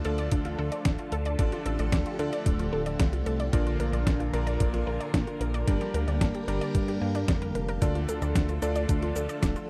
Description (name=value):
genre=italo disco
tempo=112 BPM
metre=4/4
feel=straight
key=D minor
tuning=A4 = 440 Hz
part: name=phased string machine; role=sustained chords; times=0.0-9.7 s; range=D3 to Bb4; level=-37 LUFS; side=equal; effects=ensemble chorus, phaser
part: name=analog pluck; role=arpeggios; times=0.0-9.7 s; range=D4 to G5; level=-38 LUFS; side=equal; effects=chorus, cassette tape, tape echo
part: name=bright electric grand piano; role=stabs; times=0.0-9.7 s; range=Bb2 to F5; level=-37 LUFS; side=equal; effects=none
part: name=chorused synth bass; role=bass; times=0.0-9.5 s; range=D1 to Bb2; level=-33 LUFS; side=equal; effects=none
part: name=detuned 8-bit digital drum machine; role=drums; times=0.0-9.7 s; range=cabasa, hi-hat, snare drum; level=-35 LUFS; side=equal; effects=none
part: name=electronic kick drum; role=drums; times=0.3-9.5 s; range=none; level=-30 LUFS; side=equal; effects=none
room=little or no reverb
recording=dry, close 1970s-style studio recording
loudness=-28 LUFS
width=mono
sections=0.0-9.7 A section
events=none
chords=0.0 Dm; 3.5 Bb; 5.7 Gm; 7.8 Dm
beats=0.32 0.85 | 1.39 1.92 2.46 3.00 | 3.53 4.07 4.60 5.14 | 5.67 6.21 6.75 7.28 | 7.82 8.35 8.89 9.42